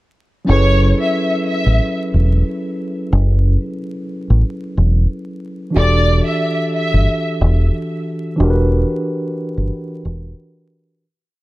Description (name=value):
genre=hip hop, boom-bap hip-hop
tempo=91 BPM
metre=4/4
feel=swing 56% on 16ths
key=F# phrygian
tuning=A4 = 439 Hz
part: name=mellow tine electric piano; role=accompaniment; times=0.4-11.1 s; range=E3 to B4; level=-21 LUFS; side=equal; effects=medium stereo tremolo, cassette tape, high-pass filter, low-pass filter, plate reverb
part: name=warm studio violin section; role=melody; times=0.5-7.2 s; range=C#5 to E5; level=-20 LUFS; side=equal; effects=high-pass filter, low-pass filter, plate reverb, tape echo
part: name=deep dub fingered electric bass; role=bass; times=0.5-10.3 s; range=E1 to A1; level=-13 LUFS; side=equal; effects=none
room=light reverb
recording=vinyl crackle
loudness=-14 LUFS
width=side -19 dB against mid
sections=0.5-11.0 hook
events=fade-out 8.4-11.0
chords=0.5 F#m11; 5.8 Em11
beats=| 0.49 1.15 1.80 2.46 | 3.12 3.78 4.44 5.10 | 5.76 6.42 7.08 7.74 | 8.40 9.06 9.72 10.38